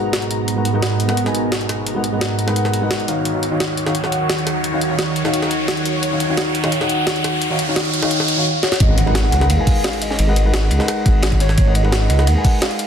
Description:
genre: liquid drum and bass.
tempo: 173 BPM.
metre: 4/4.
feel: straight.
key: G# dorian.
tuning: A4 = 440 Hz.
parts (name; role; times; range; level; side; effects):
felt-muted upright piano; accompaniment; 0.0-12.9 s; D#3 to G#5; -21 LUFS; left 1 dB; dub echo.
lush unison pad; sustained chords; 0.0-8.4 s; G#2 to A#5; -22 LUFS; right 2 dB; chorus, phaser, sidechain pumping.
riser and impact; sound effects; 0.6-10.2 s; none; -25 LUFS; equal; none.
jungle sampler-style drum kit; drums; 0.1-12.9 s; hi-hat, snare drum; -22 LUFS; equal; small room ambience.
hollow clarinet-like synth lead; melody; 8.6-12.9 s; C#5 to F#5; -24 LUFS; equal; analog chorus, ping-pong delay.
dark detuned saw bass; bass; 8.8-12.4 s; G#1 to D#2; -16 LUFS; equal; none.
crunchy breakbeat drum kit; drums; 8.8-12.9 s; hi-hat, ride cymbal, snare drum; -27 LUFS; equal; high-pass filter on cymbals, small room ambience, high-pass filter on hats, high-pass filter on snare, high-pass filter on room.
electronic kick drum; drums; 8.8-12.5 s; none; -16 LUFS; equal; overdrive, small room ambience.
room: light reverb, studio reverb.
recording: dense, heavily limited modern master.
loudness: -15 LUFS.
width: side -8 dB against mid.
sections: 0.0-8.8 A section; 8.8-12.9 B section.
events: build-up 0.0-8.8; filter sweep on analog synth pad 0.0-8.8; riser 0.6-8.5; drum fill 8.6; drop 8.8-12.9; impact 8.8-10.2.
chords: 0.0 G#m7; 3.3 D#m7; 8.8 G#m7.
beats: 0.13 | 0.48 0.83 1.17 1.52 | 1.87 2.21 2.56 2.91 | 3.25 3.60 3.95 4.29 | 4.64 4.99 5.34 5.68 | 6.03 6.38 6.72 7.07 | 7.42 7.76 8.11 8.46 | 8.80 9.15 9.50 9.85 | 10.19 10.54 10.88 11.23 | 11.58 11.93 12.27 12.62.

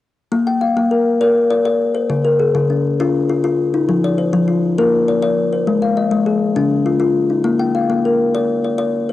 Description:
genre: southern african traditional.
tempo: 134 BPM (dotted quarters).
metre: 12/8.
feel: straight.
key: Bb equiheptatonic.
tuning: A4 = 441 Hz.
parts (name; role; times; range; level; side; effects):
kalimba; arpeggios; 0.3-9.1 s; Db3+43c to G5-43c; -14 LUFS; left 2 dB; cassette tape.
room: light reverb.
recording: home recording on cassette.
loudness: -14 LUFS.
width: side -14 dB against mid.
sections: 0.3-9.1 A section.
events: none.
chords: 0.3 Bbm; 2.1 Db; 3.9 F5; 4.8 Bbm; 5.7 Ab; 6.6 Db; 7.5 Bbm.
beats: | 0.31 0.76 1.20 1.65 | 2.10 2.54 2.99 3.44 | 3.88 4.33 4.78 5.22 | 5.67 6.12 6.56 7.01 | 7.46 7.90 8.35 8.79.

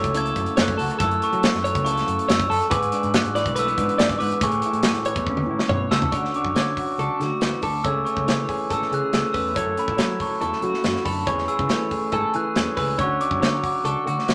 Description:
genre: math rock and midwest emo.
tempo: 140 BPM.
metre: 4/4.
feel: straight.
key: A major.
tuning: A4 = 440 Hz.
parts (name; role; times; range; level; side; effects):
glockenspiel with rubber mallets; melody; 0.0-14.3 s; B5 to G#6; -27 LUFS; equal; none.
electric guitar through a small old amp; accompaniment; 0.0-14.3 s; F#2 to A4; -30 LUFS; equal; none.
twelve-string electric guitar; arpeggios; 0.0-14.3 s; F#4 to D5; -30 LUFS; equal; none.
growling fingered electric bass; bass; 0.0-14.3 s; G#1 to F#3; -32 LUFS; equal; overdrive.
modern studio drum kit; drums; 0.0-14.3 s; hi-hat, kick drum, snare drum, toms; -27 LUFS; equal; none.
room: moderate studio reverb, RT60 0.6 s.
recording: none.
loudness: -22 LUFS.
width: mono.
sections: 0.0-6.1 A section; 6.1-14.3 B section.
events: drum fill 5.3-6.1.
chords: 0.0 F#m7; 2.7 E7; 4.4 Amaj7; 6.1 Dmaj7; 7.8 Amaj7/C#; 9.6 F#m7; 11.3 Amaj7/E; 13.0 Dmaj7.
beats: 0.15 0.57 | 1.00 1.43 1.85 2.28 | 2.71 3.14 3.56 3.99 | 4.42 4.84 5.27 5.70 | 6.13 6.56 6.99 7.42 | 7.84 8.27 8.70 9.13 | 9.56 9.99 10.42 10.85 | 11.28 11.71 12.14 12.57 | 13.00 13.43 13.86 14.29.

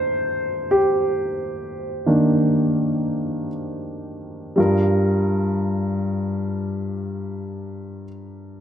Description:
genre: pop.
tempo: 55-72 BPM.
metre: 4/4.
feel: straight.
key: G minor.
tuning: A4 = 439 Hz.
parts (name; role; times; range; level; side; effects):
warm grand piano; accompaniment; 0.0-8.6 s; G2 to C5; -20 LUFS; equal; none.
room: moderate concert hall reverb, RT60 1.9 s, small room ambience.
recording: none.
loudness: -19 LUFS.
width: side -9 dB against mid.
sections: 0.0-4.6 A section; 4.6-8.6 B section.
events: slowing down 0.0-4.6; grand piano solo 0.0-4.6.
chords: 0.0 Cm7/Eb; 4.6 Gm7.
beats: | 0.72 1.60 2.53 3.52 | 4.58 5.67 6.77 7.87.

